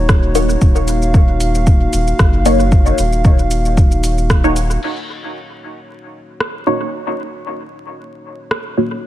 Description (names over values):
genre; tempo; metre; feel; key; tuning
dub techno; 114 BPM; 4/4; swing 54% on 16ths; Eb minor; A4 = 439 Hz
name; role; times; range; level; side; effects
dark analog pad; sustained chords; 0.0-9.1 s; Bb3 to F5; -23 LUFS; equal; chorus, sidechain pumping
soft dub sub bass; bass; 0.0-4.8 s; Eb1 to Gb1; -16 LUFS; equal; sidechain pumping
deep house drum kit; drums; 0.1-8.6 s; crash cymbal, hi-hat, rim click, shaker; -24 LUFS; equal; low-pass filter on perc, studio reverb, low-pass filter on hats, low-pass filter on snare, low-pass filter on cymbals, dub echo
electronic kick drum; drums; 0.1-4.4 s; none; -11 LUFS; equal; studio reverb
filtered dub chord stab; stabs; 0.3-8.9 s; Bb3 to Db5; -19 LUFS; equal; phaser, sidechain pumping, dub echo
room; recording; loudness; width
digital ambience; vinyl crackle; -12 LUFS; side -13 dB against mid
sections
0.0-4.8 A section; 4.8-9.1 B section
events
filter sweep on synth stab 4.8-9.1; filter sweep on analog synth pad 4.8-9.1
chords
0.0 Ebm7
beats
0.09 | 0.61 1.14 1.67 2.19 | 2.72 3.25 3.77 4.30 | 4.83 5.35 5.88 6.40 | 6.93 7.46 7.98 8.51 | 9.04